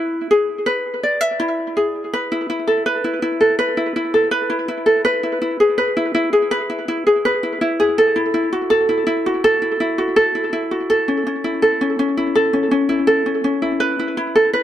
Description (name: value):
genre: pop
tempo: 82 BPM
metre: 4/4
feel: straight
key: A major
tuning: A4 = 440 Hz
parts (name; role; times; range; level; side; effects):
- ukulele; solo; 0.0-14.6 s; C#4 to E5; -16 LUFS; equal; analog delay
room: moderate spring reverb, RT60 2.6 s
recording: echo-heavy mix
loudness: -16 LUFS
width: side -11 dB against mid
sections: 0.0-2.1 A section; 2.1-13.8 B section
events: none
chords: 0.0 E; 2.1 Asus2; 5.1 E; 8.0 F#m7; 10.9 A; 13.8 Asus2